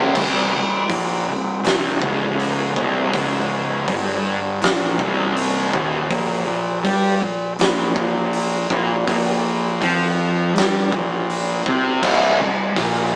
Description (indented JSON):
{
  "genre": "stoner and doom metal",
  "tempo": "81 BPM",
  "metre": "4/4",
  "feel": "straight",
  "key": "unclear",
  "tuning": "A4 = 438 Hz",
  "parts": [
    { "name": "biting overdriven guitar", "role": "riff", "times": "0.0-0.1, 12.0-13.2 s", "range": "C2 to Bb2", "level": "-20 LUFS", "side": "equal", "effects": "none" },
    { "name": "thick fuzz guitar", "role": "riff", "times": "0.0-13.2 s", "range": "C2 to G3", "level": "-21 LUFS", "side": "equal", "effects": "distortion" },
    { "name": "thick fuzz guitar", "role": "riff", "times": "0.0-0.1, 12.0-13.1 s", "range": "C2 to Bb2", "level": "-28 LUFS", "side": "equal", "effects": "distortion" },
    { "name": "fuzz fingered electric bass", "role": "bass", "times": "0.0-13.2 s", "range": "C1 to G2", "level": "-23 LUFS", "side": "equal", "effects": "overdrive, tube saturation" },
    { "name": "oversized low-tuned drum kit", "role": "drums", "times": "0.2-12.9 s", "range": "crash cymbal, hi-hat, kick drum, snare drum", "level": "-22 LUFS", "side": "equal", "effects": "none" }
  ],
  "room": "moderate small room reverb, RT60 0.5 s",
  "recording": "rough rehearsal-room recording, tube saturation, small speaker sound",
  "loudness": "-17 LUFS",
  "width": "side -30 dB against mid",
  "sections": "0.2-13.2 A section",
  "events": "drum fill 0.0",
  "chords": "0.2 C5; 6.1 Bb5; 12.0 N.C.",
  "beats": "| 0.15 0.90 1.64 2.39 | 3.13 3.88 4.62 5.37 | 6.11 6.85 7.59 8.33 | 9.07 9.81 10.55 11.29 | 12.03 12.76"
}